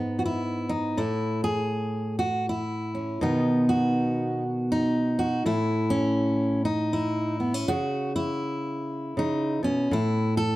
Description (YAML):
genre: folk, solo fingerstyle acoustic guitar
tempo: 80 BPM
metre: 3/4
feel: swing 62% on 8ths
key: unclear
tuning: A4 = 440 Hz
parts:
  - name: fingerpicked steel-string acoustic guitar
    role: solo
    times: 0.0-10.6 s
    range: G#2 to A4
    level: -24 LUFS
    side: equal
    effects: none
room: light reverb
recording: dark, warm production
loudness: -24 LUFS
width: side -16 dB against mid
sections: 1.0-10.6 A section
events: none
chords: 0.0 G#m; 1.0 A; 3.2 B; 5.5 A; 7.7 C#m; 9.9 N.C.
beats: 0.23 | 0.98 1.73 2.47 | 3.21 3.96 4.71 | 5.45 6.20 6.94 | 7.68 8.43 9.18 | 9.92